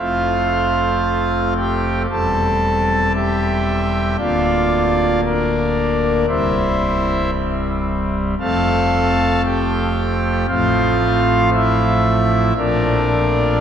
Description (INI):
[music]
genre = classical, chorale-style piece for pipe organ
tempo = 57 BPM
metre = 4/4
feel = rubato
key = F major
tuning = A4 = 442 Hz
[part]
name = pipe organ, foundations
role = solo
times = 0.0-13.6 s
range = C1 to A5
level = -15 LUFS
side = equal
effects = none
[sound]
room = wet cathedral reverb, RT60 4.4 s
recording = none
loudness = -15 LUFS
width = side -8 dB against mid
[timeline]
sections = 0.0-13.6 A section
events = none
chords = 0.0 F; 2.1 C/E; 4.2 Bb/D; 6.3 C; 8.4 F; 10.5 F/A; 12.6 Bbmaj7